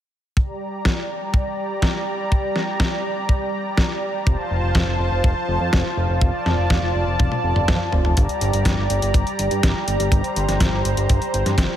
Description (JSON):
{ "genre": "italo disco", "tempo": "123 BPM", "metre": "4/4", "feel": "straight", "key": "G minor", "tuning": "A4 = 440 Hz", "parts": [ { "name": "lush unison pad", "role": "sustained chords", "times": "0.4-11.8 s", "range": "F3 to Bb5", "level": "-23 LUFS", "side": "right 1 dB", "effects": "chorus, vintage 12-bit sampler grit, shimmer reverb" }, { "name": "kick drum", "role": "drums", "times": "0.4-11.7 s", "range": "none", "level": "-19 LUFS", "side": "equal", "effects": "none" }, { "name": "detuned 8-bit digital drum machine", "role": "drums", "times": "0.9-11.7 s", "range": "hi-hat, snare drum, toms", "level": "-24 LUFS", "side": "left 1 dB", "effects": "overdrive" }, { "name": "fat analog bass", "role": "bass", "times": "4.3-11.7 s", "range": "F1 to G2", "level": "-23 LUFS", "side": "equal", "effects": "tube saturation" } ], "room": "light reverb, small room ambience", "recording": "none", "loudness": "-18 LUFS", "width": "side -11 dB against mid", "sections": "0.4-8.2 A section; 8.2-11.8 B section", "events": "drum fill 7.2-8.2", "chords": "0.4 Gm; 4.3 F; 6.2 Dm/F; 8.2 Gm" }